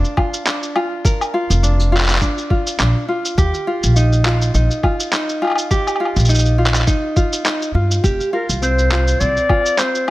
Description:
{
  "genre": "folktronica",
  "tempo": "103 BPM",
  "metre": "4/4",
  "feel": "swing 56% on 16ths",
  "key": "Bb major",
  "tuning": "A4 = 438 Hz",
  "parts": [
    { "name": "tenor ukulele", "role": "arpeggios", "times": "0.0-10.1 s", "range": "C4 to Bb4", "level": "-21 LUFS", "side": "equal", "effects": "digital delay" },
    { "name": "electronic shaker, woodblock and handclaps", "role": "drums", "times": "0.0-10.1 s", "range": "none", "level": "-21 LUFS", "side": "equal", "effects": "none" },
    { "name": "electronic kick drum", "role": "drums", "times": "0.2-9.6 s", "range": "none", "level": "-17 LUFS", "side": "equal", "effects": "none" },
    { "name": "upright bass", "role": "bass", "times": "1.5-9.3 s", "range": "F1 to G2", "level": "-15 LUFS", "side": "equal", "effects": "tube saturation" },
    { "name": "breathy clarinet", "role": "melody", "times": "8.3-10.1 s", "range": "Bb4 to D5", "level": "-18 LUFS", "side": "left 1 dB", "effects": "none" }
  ],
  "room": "light reverb, small room ambience",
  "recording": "none",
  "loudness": "-14 LUFS",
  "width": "side -17 dB against mid",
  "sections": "0.0-10.1 A section",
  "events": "none",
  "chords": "0.0 Bb; 3.4 Ebadd9; 8.0 Fsus2",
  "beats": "0.47 | 1.05 1.63 2.21 2.79 | 3.38 3.96 4.54 5.12 | 5.71 6.29 6.87 7.46 | 8.04 8.62 9.20 9.79"
}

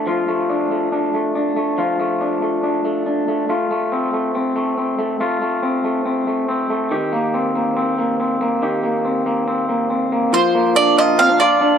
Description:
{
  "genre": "indie pop",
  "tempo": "140 BPM",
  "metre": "4/4",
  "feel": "straight",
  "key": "unclear",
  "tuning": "A4 = 438 Hz",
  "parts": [
    { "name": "electric guitar through a small old amp", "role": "arpeggios", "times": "0.0-11.8 s", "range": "Eb3 to G4", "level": "-17 LUFS", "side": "left 1 dB", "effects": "none" },
    { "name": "mandolin", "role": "melody", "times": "10.3-11.8 s", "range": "C5 to F5", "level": "-14 LUFS", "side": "right 5 dB", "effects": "none" }
  ],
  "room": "moderate booth ambience, RT60 0.2 s",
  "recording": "dark, warm production, lossy compression artefacts",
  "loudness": "-16 LUFS",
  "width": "side -8 dB against mid",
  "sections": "0.0-10.3 A section; 10.3-11.8 B section",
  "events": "none",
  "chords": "0.0 F6; 3.5 F; 6.9 Cm7; 10.3 Bb",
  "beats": "| 0.07 0.50 0.92 1.35 | 1.78 2.21 2.63 3.06 | 3.49 3.92 4.34 4.77 | 5.20 5.63 6.05 6.48 | 6.91 7.34 7.77 8.19 | 8.62 9.05 9.48 9.90 | 10.33 10.76 11.19 11.61"
}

